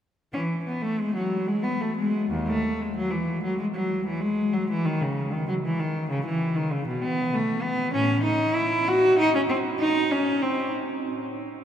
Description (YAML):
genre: classical, baroque-style suite movement for unaccompanied cello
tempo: 97 BPM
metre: 3/4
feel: rubato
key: E major, C# minor from 7.9 s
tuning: A4 = 444 Hz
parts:
  - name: rich cello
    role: solo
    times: 0.3-10.7 s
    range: D#2 to F#4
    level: -23 LUFS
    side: equal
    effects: none
room: wet cathedral reverb, RT60 6.2 s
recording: in a vast, echoing space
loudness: -23 LUFS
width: side -9 dB against mid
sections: 0.3-11.6 A section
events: none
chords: none